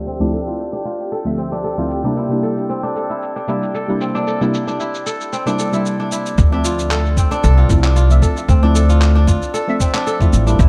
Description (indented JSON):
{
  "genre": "organic downtempo",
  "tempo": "114 BPM",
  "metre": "4/4",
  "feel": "swing 53% on 16ths",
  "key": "D minor",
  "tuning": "A4 = 439 Hz",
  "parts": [
    { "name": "deep mellow chord stab", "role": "accompaniment", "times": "0.0-10.7 s", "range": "D2 to E5", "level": "-24 LUFS", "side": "equal", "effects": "chorus, sidechain pumping, tape echo" },
    { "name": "kora", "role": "arpeggios", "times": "0.0-10.7 s", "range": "C4 to A4", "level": "-24 LUFS", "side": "equal", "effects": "low-pass filter, dub echo" },
    { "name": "twinkling granular texture", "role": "texture", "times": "0.0-6.4 s", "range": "G4 to G5", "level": "-34 LUFS", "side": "equal", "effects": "built-in reverb" },
    { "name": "electronic shaker and handclaps", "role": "drums", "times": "0.1-10.7 s", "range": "none", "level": "-29 LUFS", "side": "equal", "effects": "small room ambience, tape echo" },
    { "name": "upright bass", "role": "bass", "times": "6.4-10.7 s", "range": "A1 to D2", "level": "-15 LUFS", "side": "equal", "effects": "sidechain pumping" },
    { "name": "electronic kick drum", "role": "drums", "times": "6.4-10.7 s", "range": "none", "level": "-18 LUFS", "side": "equal", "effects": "small room ambience" }
  ],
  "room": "light reverb, small room ambience",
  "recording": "echo-heavy mix, low-pass filter",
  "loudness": "-17 LUFS",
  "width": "mono",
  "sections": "0.0-6.4 A section; 6.4-10.7 B section",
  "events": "filter sweep on kora 0.0-6.4; filter sweep 0.0-6.4",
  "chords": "0.0 Dm7; 2.2 C7; 6.4 Dm7",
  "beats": "| 0.07 0.59 1.12 1.65 | 2.17 2.70 3.22 3.75 | 4.28 4.80 5.33 5.86 | 6.38 6.91 7.43 7.96 | 8.49 9.01 9.54 10.07 | 10.59"
}